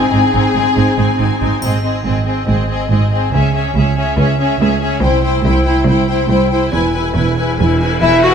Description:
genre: cinematic, heroic adventure film score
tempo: 140 BPM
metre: 4/4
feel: straight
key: unclear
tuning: A4 = 440 Hz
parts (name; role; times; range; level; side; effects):
- warm symphonic violin section; melody; 0.0-8.3 s; Eb5 to Ab5; -23 LUFS; left 4 dB; none
- warm symphonic violin section; second line; 0.0-8.3 s; Ab4 to Gb5; -19 LUFS; left 5 dB; none
- rich symphonic viola section; accompaniment; 0.0-8.3 s; C4 to E4; -19 LUFS; right 1 dB; none
- mellow French horn section; sustained chords; 0.0-1.4 s; C4; -19 LUFS; left 3 dB; none
- rich studio cello section; bass; 0.1-8.3 s; C2 to Gb4; -18 LUFS; right 1 dB; none
- rich symphonic double bass section; bass; 0.1-8.3 s; E1 to Db2; -18 LUFS; right 3 dB; none
- triangle and cymbal swell; percussion; 1.6-2.4, 5.0-8.3 s; none; -28 LUFS; left 1 dB; none
- clear clarinet; second line; 8.0-8.3 s; E4 to Gb4; -16 LUFS; left 5 dB; none
- mellow hollow small flute group; second line; 8.0-8.3 s; E5 to Gb5; -16 LUFS; right 4 dB; none
room: moderate scoring stage reverb, RT60 1.9 s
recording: none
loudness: -12 LUFS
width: side -7 dB against mid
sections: 0.0-1.6 A section; 1.6-8.3 B section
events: none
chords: 0.0 Ab; 3.3 Dbm; 5.0 C; 6.7 E

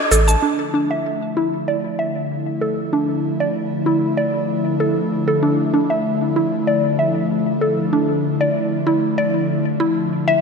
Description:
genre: downtempo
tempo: 96 BPM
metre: 4/4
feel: straight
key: D minor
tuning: A4 = 435 Hz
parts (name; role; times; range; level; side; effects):
- mallet-like synth pluck; arpeggios; 0.1-10.4 s; D4 to A5; -20 LUFS; equal; chorus, ping-pong delay
- airy breathy pad; sustained chords; 0.4-10.4 s; D3 to E4; -20 LUFS; left 1 dB; chorus
room: wet lush hall reverb, RT60 2.8 s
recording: bright 1980s-style digital production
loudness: -17 LUFS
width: side -5 dB against mid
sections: 0.4-10.4 A section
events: filter sweep on synth pluck 0.4-10.4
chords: 0.4 Dmadd9

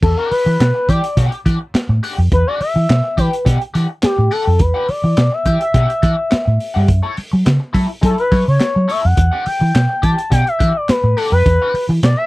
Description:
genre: funk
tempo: 105 BPM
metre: 4/4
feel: straight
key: E dorian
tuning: A4 = 441 Hz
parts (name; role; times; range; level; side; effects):
- expressive portamento lead; melody; 0.0-12.3 s; G4 to A5; -18 LUFS; left 1 dB; chorus
- electric guitar at the edge of break-up; accompaniment; 0.0-12.2 s; E4 to G5; -25 LUFS; left 3 dB; wah, wide subtle chorus
- vintage muted fingered electric bass; bass; 0.0-12.1 s; E2 to F#3; -14 LUFS; equal; none
- crunchy breakbeat drum kit; drums; 0.0-12.2 s; crash cymbal, handclaps, hi-hat, kick drum, snare drum; -18 LUFS; equal; none
room: little or no reverb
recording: dry, close 1970s-style studio recording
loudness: -13 LUFS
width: side -20 dB against mid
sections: 0.0-12.3 A section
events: analog synth lead solo 0.0-12.3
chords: 0.0 Em9; 6.9 F#m7; 9.2 Em9

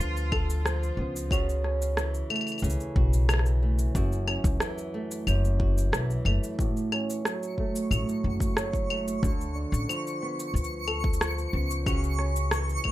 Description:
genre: folktronica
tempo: 91 BPM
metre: 4/4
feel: straight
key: A major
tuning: A4 = 440 Hz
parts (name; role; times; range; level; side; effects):
- bright cello; melody; 0.0-1.0 s; F4; -38 LUFS; right 2 dB; plate reverb, tape echo
- flamenco guitar; arpeggios; 0.0-12.9 s; F#2 to A4; -32 LUFS; right 2 dB; low-pass filter, plate reverb, tape echo
- upright bass; bass; 0.0-12.8 s; F#1 to D2; -27 LUFS; equal; none
- electronic shaker, claves and rim click; drums; 0.0-12.9 s; none; -31 LUFS; left 1 dB; none
- electronic kick drum; drums; 0.3-12.9 s; none; -28 LUFS; equal; none
- twinkling granular texture; texture; 7.5-12.9 s; C#6; -36 LUFS; left 1 dB; built-in reverb
room: light reverb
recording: none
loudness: -25 LUFS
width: side -15 dB against mid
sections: 0.0-6.6 A section; 6.6-12.9 A section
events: filter sweep on nylon-string guitar 6.6-12.9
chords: 0.0 Dm6; 1.3 A6/C#; 4.0 F#m7; 6.6 A6; 9.2 Dm6; 11.9 A6/C# (rootless)

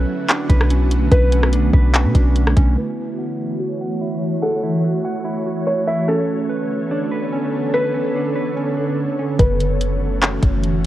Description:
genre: hip hop, atmospheric cloud-rap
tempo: 145 BPM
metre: 4/4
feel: half-time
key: F# minor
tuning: A4 = 440 Hz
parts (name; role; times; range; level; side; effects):
- felt-muted upright piano; melody; 0.0-10.6 s; A4 to E5; -24 LUFS; equal; low-pass filter, digital delay
- ethereal airy pad; sustained chords; 0.0-10.9 s; D3 to C#5; -22 LUFS; equal; ensemble chorus, built-in reverb, sidechain pumping, low-pass filter
- mellow electric guitar; arpeggios; 0.0-9.4 s; C#4 to F#5; -25 LUFS; right 4 dB; low-pass filter, digital delay
- soft 808-style bass; bass; 0.0-2.8, 9.4-10.9 s; F#1 to B2; -17 LUFS; equal; none
- smooth R&B drum kit; drums; 0.3-2.7, 9.4-10.7 s; handclaps, hi-hat, kick drum, rim click; -16 LUFS; equal; none
room: little or no reverb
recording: worn, warbling old tape, cassette tape, warbly pitch drift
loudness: -16 LUFS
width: side -14 dB against mid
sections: 0.0-2.8 A section; 2.8-9.4 B section; 9.4-10.9 C section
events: filter sweep 2.8-9.4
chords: 0.0 Bm9; 2.8 F#m7; 6.1 Bm9; 9.4 F#m7

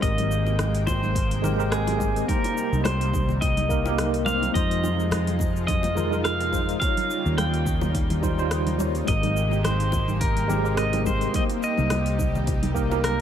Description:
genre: sunset chillout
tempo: 106 BPM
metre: 4/4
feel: swing 55% on 16ths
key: Ab major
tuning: A4 = 440 Hz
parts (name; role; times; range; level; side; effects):
- pedal steel guitar; melody; 0.0-13.2 s; Ab4 to G5; -28 LUFS; equal; tape echo
- tine electric piano; accompaniment; 0.0-13.2 s; G3 to Db5; -28 LUFS; moving between left 4 dB and right 4 dB; overdrive, fast stereo tremolo, auto-pan, vintage 12-bit sampler grit
- lush unison pad; sustained chords; 0.0-13.2 s; C3 to G5; -32 LUFS; equal; chorus
- mellow fretless electric bass; bass; 0.0-13.2 s; Ab1 to F2; -26 LUFS; equal; none
- deep house drum kit; drums; 0.0-13.2 s; cabasa, congas, hi-hat, rim click; -32 LUFS; right 4 dB; none
- electronic kick drum; drums; 0.0-12.9 s; none; -27 LUFS; equal; none
- bongos and congas; percussion; 0.5-13.0 s; none; -34 LUFS; left 5 dB; none
room: light reverb, digital ambience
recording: none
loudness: -21 LUFS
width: side -9 dB against mid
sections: 0.0-13.2 A section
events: none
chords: 0.0 Abmaj9; 2.3 Cm7; 4.5 Fm7; 6.8 Eb9; 9.1 Abmaj9; 11.3 Cm7

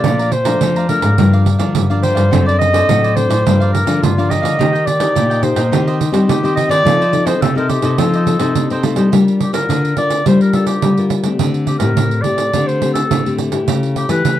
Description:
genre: samba and choro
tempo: 106 BPM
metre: 4/4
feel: straight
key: G minor from 9.1 s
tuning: A4 = 438 Hz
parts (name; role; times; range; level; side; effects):
- clear clarinet; melody; 0.0-14.4 s; F4 to Eb5; -17 LUFS; equal; none
- cavaquinho; accompaniment; 0.0-9.1 s; Eb4 to Bb5; -25 LUFS; right 4 dB; none
- nylon-string guitar; accompaniment; 0.0-14.4 s; F2 to Bb4; -20 LUFS; left 4 dB; none
- pandeiro; percussion; 0.0-14.4 s; none; -19 LUFS; right 8 dB; none
- nylon-string guitar; bass; 0.1-14.4 s; F#2 to D4; -16 LUFS; left 1 dB; none
room: light reverb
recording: dry, close 1970s-style studio recording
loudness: -12 LUFS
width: side -12 dB against mid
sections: 0.0-9.1 A section; 9.1-14.4 B section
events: none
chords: 0.0 Bbmaj7; 1.2 Gm7; 2.3 D7/F#; 3.5 Gm7; 4.6 Eb; 5.7 Cm/Eb; 6.9 F7; 9.1 Gm7; 11.4 D7sus4; 13.7 A7/C#

